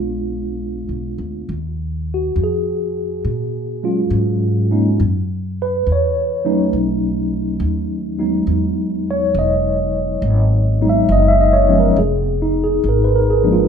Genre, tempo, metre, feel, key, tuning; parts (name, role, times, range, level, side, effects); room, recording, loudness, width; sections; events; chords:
jazz ballad; 69 BPM; 4/4; swing 68% on 8ths; Eb minor; A4 = 444 Hz
mellow tine electric piano; accompaniment; 0.0-13.7 s; F3 to E5; -17 LUFS; equal; medium stereo tremolo
upright bass; bass; 0.0-13.7 s; E1 to Bb2; -20 LUFS; equal
moderate large studio reverb, RT60 0.9 s; band playing live in one room; -15 LUFS; side -7 dB against mid
0.0-1.5 A section; 1.5-13.7 B section
0.0 Bb7b9; 1.5 Ebm11; 5.0 Gbm7; 6.7 B7; 8.5 Emaj9; 12.0 Fdim7